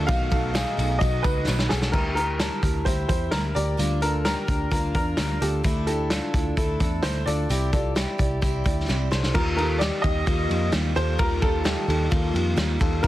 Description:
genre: jangly indie pop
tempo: 130 BPM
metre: 4/4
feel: straight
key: unclear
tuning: A4 = 440 Hz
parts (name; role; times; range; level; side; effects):
- warm upright piano; melody; 0.0-13.1 s; G4 to F5; -28 LUFS; equal; plate reverb
- picked steel-string acoustic guitar; accompaniment; 0.0-13.1 s; B2 to D5; -32 LUFS; right 6 dB; plate reverb
- lush unison pad; sustained chords; 0.0-1.9, 9.3-13.1 s; B2 to F4; -36 LUFS; equal; none
- direct-recorded clean electric guitar; arpeggios; 0.0-13.1 s; A3 to A5; -31 LUFS; left 4 dB; plate reverb, digital delay
- vintage muted picked electric bass; bass; 0.0-13.1 s; B1 to F2; -26 LUFS; equal; none
- loose indie drum kit; drums; 0.1-13.1 s; crash cymbal, hi-hat, kick drum, ride cymbal, snare drum; -25 LUFS; equal; none
- tambourine; percussion; 0.1-1.8 s; none; -44 LUFS; left 9 dB; none
room: light reverb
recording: dense, heavily limited modern master, vinyl crackle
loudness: -21 LUFS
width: side -15 dB against mid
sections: 0.0-1.9 A section; 1.9-9.3 B section; 9.3-13.1 A section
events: drum fill 1.5-1.9, 8.9-9.3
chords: 0.1 B7; 1.9 Edim/D; 3.8 Gm7/D; 5.6 Asus4/D; 7.5 Cadd9; 9.3 Ebadd9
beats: | 0.09 0.55 1.01 1.47 | 1.94 2.40 2.86 3.33 | 3.79 4.25 4.72 5.18 | 5.64 6.11 6.57 7.04 | 7.50 7.96 8.42 8.89 | 9.35 9.81 10.27 10.73 | 11.20 11.66 12.12 12.58 | 13.04

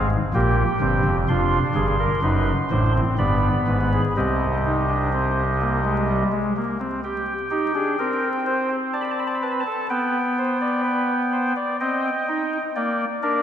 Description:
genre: classical, baroque-style 4-part fugue for pipe organ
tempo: 63 BPM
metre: 3/4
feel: straight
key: C minor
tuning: A4 = 439 Hz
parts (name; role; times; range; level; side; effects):
- chamber organ, soft reed; solo; 0.0-13.4 s; F1 to C6; -20 LUFS; equal; none
room: wet church reverb, RT60 3.3 s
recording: dark, warm production, vinyl crackle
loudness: -20 LUFS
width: side -9 dB against mid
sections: 0.0-7.0 A section; 7.0-13.4 B section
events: none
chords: 0.3 Gm7/Bb; 1.3 Dm7b5/F; 2.2 F#dim7; 3.2 G; 4.2 Cm; 7.0 C5; 9.0 D5/C; 9.9 G/B; 11.8 Cm; 12.8 Gm/Bb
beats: 0.35 | 1.29 2.24 3.19 | 4.16 5.12 6.08 | 7.05 8.00 8.96 | 9.91 10.85 11.80 | 12.75

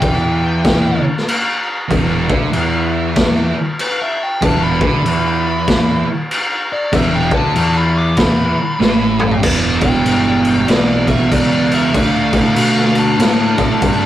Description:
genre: stoner and doom metal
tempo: 96 BPM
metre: 4/4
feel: swing 62% on 8ths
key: E minor, E phrygian from 9.4 s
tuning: A4 = 442 Hz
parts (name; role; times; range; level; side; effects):
- fuzz lead guitar; melody; 0.0-14.1 s; B4 to D6; -21 LUFS; left 2 dB; distortion
- thick fuzz guitar; riff; 0.0-14.1 s; E2 to D4; -24 LUFS; left 5 dB; none
- thick fuzz guitar; riff; 0.0-14.1 s; E2 to D4; -18 LUFS; right 4 dB; distortion
- thick fuzz guitar; riff; 0.0-14.1 s; E2 to D4; -24 LUFS; equal; none
- fuzz picked electric bass; bass; 0.0-14.1 s; E1 to B2; -21 LUFS; equal; overdrive
- raw garage drum kit; drums; 0.0-14.0 s; crash cymbal, kick drum, snare drum, toms; -16 LUFS; left 1 dB; none
room: moderate studio reverb, RT60 0.5 s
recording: rough rehearsal-room recording, warm saturation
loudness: -12 LUFS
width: side -13 dB against mid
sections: 0.0-9.4 A section; 9.4-14.1 B section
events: lead electric guitar solo 0.0-9.4; drum fill 8.8-9.4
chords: 0.0 E5; 9.4 Em; 11.9 Dm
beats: 0.02 0.65 1.28 | 1.91 2.54 3.16 3.79 | 4.42 5.05 5.67 6.30 | 6.93 7.56 8.19 8.81 | 9.44 10.07 10.69 11.32 | 11.95 12.57 13.20 13.82

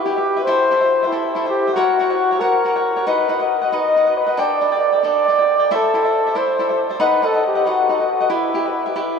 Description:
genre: mexican folk, mariachi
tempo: 92 BPM (dotted quarters)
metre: 6/8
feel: rubato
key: unclear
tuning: A4 = 442 Hz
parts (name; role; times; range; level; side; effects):
- dark trumpet; melody; 0.0-9.2 s; E4 to D#5; -17 LUFS; equal; none
- cavaquinho; accompaniment; 0.0-9.2 s; D4 to G5; -19 LUFS; left 3 dB; none
room: wet huge ambient reverb, RT60 8.5 s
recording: in a vast, echoing space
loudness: -15 LUFS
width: side -6 dB against mid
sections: 0.0-9.2 A section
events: none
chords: 0.5 Am; 1.8 F#; 3.1 B; 4.4 Gsus2; 5.7 Am; 7.0 B; 8.3 Em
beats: | 0.47 1.11 | 1.76 2.41 | 3.07 3.73 | 4.39 5.06 | 5.72 6.37 | 7.01 7.66 | 8.32 8.97

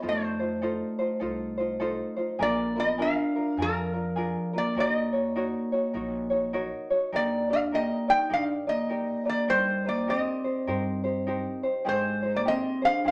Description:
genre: Hawaiian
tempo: 102 BPM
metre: 4/4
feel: swing 62% on 8ths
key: Eb major from 7.1 s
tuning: A4 = 440 Hz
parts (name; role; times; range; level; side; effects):
- tenor ukulele; accompaniment; 0.0-13.1 s; D4 to D5; -33 LUFS; equal; none
- upright bass; bass; 0.0-13.1 s; Ab1 to G2; -42 LUFS; equal; none
- metal-body resonator slide guitar; melody; 0.1-13.1 s; Bb4 to G5; -29 LUFS; equal; none
- vibraphone with medium mallets; second line; 0.1-13.1 s; F3 to Eb4; -33 LUFS; equal; none
room: wet studio reverb, RT60 0.8 s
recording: none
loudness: -28 LUFS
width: mono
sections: 0.0-7.1 A section; 7.1-13.1 B section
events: none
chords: 0.0 F7; 2.4 Bb7; 4.8 Ebm7; 7.1 Ebmaj7; 9.5 Cm7/Eb; 11.9 Abmaj7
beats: | 0.03 0.62 1.21 1.80 | 2.40 2.99 3.58 4.17 | 4.76 5.35 5.94 6.54 | 7.13 7.72 8.31 8.90 | 9.49 10.08 10.67 11.27 | 11.86 12.45 13.04

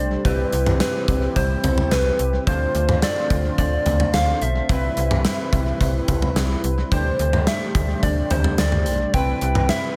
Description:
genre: synth-pop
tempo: 108 BPM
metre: 4/4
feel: straight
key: C major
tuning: A4 = 444 Hz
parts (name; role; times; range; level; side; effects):
- soft struck synth lead; melody; 0.0-10.0 s; B4 to G5; -27 LUFS; equal; chorus, tape echo
- analog synth brass; accompaniment; 0.0-10.0 s; C4 to C5; -31 LUFS; equal; chorus, tape echo
- warm analog pad; sustained chords; 0.0-10.0 s; C3 to B4; -32 LUFS; equal; chorus
- slap-like FM bass; bass; 0.0-9.7 s; B1 to D2; -25 LUFS; equal; none
- gated 80s drum kit; drums; 0.2-9.8 s; hi-hat, kick drum, snare drum, toms; -25 LUFS; equal; tape echo
room: moderate spring reverb, RT60 1.2 s, small room ambience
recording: echo-heavy mix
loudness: -20 LUFS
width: mono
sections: 0.0-10.0 A section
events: none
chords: 0.2 Cmaj7; 2.5 Dm7; 4.7 Cmaj7; 6.9 D7sus4; 9.1 Cmaj7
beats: | 0.25 0.81 1.36 1.92 | 2.47 3.03 3.58 4.14 | 4.69 5.25 5.80 6.36 | 6.92 7.47 8.03 8.58 | 9.14 9.69

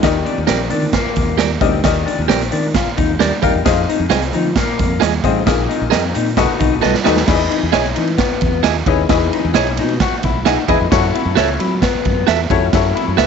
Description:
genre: uptempo 1960s-style soul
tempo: 132 BPM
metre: 4/4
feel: straight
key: Eb major, E major from 7.3 s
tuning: A4 = 440 Hz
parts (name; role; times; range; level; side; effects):
- bright upright piano; accompaniment; 0.0-13.3 s; Bb2 to G#5; -19 LUFS; left 15 dB; none
- electric guitar through a small old amp; riff; 0.0-13.3 s; Bb3 to F#4; -21 LUFS; left 14 dB; spring reverb
- modern bright fingered electric bass; bass; 0.0-13.3 s; A1 to F#3; -21 LUFS; left 1 dB; none
- raw garage drum kit; drums; 0.0-13.3 s; crash cymbal, hi-hat, kick drum, ride cymbal, snare drum; -17 LUFS; right 4 dB; none
- congas; percussion; 0.0-7.2 s; none; -28 LUFS; right 8 dB; none
- clean electric guitar; stabs; 0.5-13.3 s; E4 to E5; -20 LUFS; right 14 dB; slapback echo
room: small room ambience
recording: 1960s-style stereo with parts hard left and right, nothing above 7.9 kHz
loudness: -13 LUFS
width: side -6 dB against mid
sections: 0.0-7.3 A section; 7.3-13.3 A section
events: drum fill 6.8-7.3; upright piano fill 10.2-10.9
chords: 0.0 Ebmaj7; 3.7 Fm7; 5.5 Bb7sus4; 6.4 B7; 7.3 Emaj7; 10.9 F#m7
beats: | 0.04 0.49 0.94 1.39 | 1.85 2.30 2.75 3.20 | 3.65 4.11 4.56 5.01 | 5.47 5.92 6.38 6.83 | 7.28 7.74 8.19 8.64 | 9.10 9.55 10.01 10.46 | 10.91 11.37 11.82 12.28 | 12.73 13.19

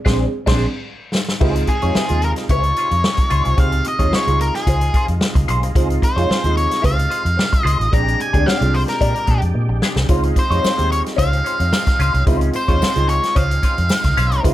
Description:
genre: funk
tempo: 110 BPM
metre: 4/4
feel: straight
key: unclear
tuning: A4 = 440 Hz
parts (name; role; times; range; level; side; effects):
- clean electric guitar; accompaniment; 0.0-14.5 s; Ab3 to Db5; -25 LUFS; left 3 dB; wah, phaser
- dark upright piano; stabs; 0.1-14.5 s; C3 to Ab4; -24 LUFS; right 3 dB; none
- vintage muted fingered electric bass; bass; 0.1-14.5 s; A1 to Bb2; -19 LUFS; equal; none
- vintage drum kit; drums; 0.1-14.5 s; crash cymbal, hi-hat, kick drum, snare drum; -19 LUFS; equal; none
- overdriven tonewheel organ; sustained chords; 1.4-14.5 s; C3 to G4; -30 LUFS; right 1 dB; slow rotary speaker, chorus vibrato
- octave-fuzz lead guitar; melody; 1.7-14.4 s; Ab4 to Bb5; -20 LUFS; equal; distortion
- tambourine; percussion; 10.1-14.5 s; none; -39 LUFS; left 6 dB; none
room: light reverb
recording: none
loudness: -15 LUFS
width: side -14 dB against mid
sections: 0.0-1.4 A section; 1.4-14.5 B section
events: band accent 0.0-1.4; drum fill 0.3-1.4, 9.6-10.1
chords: 0.0 Bb9; 1.4 Dbmaj7; 7.9 Bb13; 10.1 Dbmaj7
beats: 0.32 0.87 | 1.41 1.95 2.49 3.04 | 3.58 4.12 4.67 5.21 | 5.75 6.30 6.84 7.38 | 7.93 8.47 9.01 9.56 | 10.10 10.64 11.19 11.73 | 12.27 12.82 13.36 13.90 | 14.45

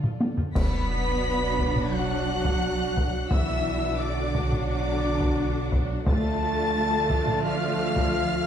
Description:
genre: cinematic, epic orchestral film score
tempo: 87 BPM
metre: 4/4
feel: straight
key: unclear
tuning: A4 = 440 Hz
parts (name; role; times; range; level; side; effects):
- warm symphonic violin section; melody; 0.0-8.5 s; D5 to B6; -35 LUFS; left 2 dB; none
- rich symphonic violin section; second line; 0.0-8.5 s; A4 to B5; -34 LUFS; left 3 dB; none
- bright symphonic viola section; accompaniment; 0.0-8.5 s; A3 to F#4; -35 LUFS; left 1 dB; none
- dark French horn section; sustained chords; 0.0-8.5 s; F3 to B4; -33 LUFS; left 1 dB; none
- rich symphonic cello section; bass; 0.0-8.5 s; D3 to B3; -32 LUFS; right 2 dB; none
- solo taiko drums; drums; 0.0-8.5 s; none; -27 LUFS; equal; none
- warm symphonic string section; sustained chords; 0.5-8.5 s; D4 to F#5; -36 LUFS; left 2 dB; none
- dark trumpet section; stabs; 0.5-8.5 s; D5 to B5; -33 LUFS; left 1 dB; none
- rich symphonic double bass section; bass; 0.5-8.5 s; B1 to D2; -31 LUFS; right 2 dB; none
- warm trombone section; sustained chords; 0.6-8.5 s; F3 to D4; -35 LUFS; right 3 dB; none
- clash cymbals and concert bass drum; percussion; 0.6-1.9 s; none; -32 LUFS; equal; none
room: moderate scoring stage reverb, RT60 1.4 s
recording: dark, warm production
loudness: -23 LUFS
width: side -9 dB against mid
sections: 0.5-8.5 A section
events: drum fill 0.0-0.5; band accent 0.5-1.2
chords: 0.0 Dm; 0.5 Bm; 6.1 Dm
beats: | 0.55 1.24 1.93 2.62 | 3.31 4.00 4.69 5.38 | 6.07 6.76 7.45 8.13

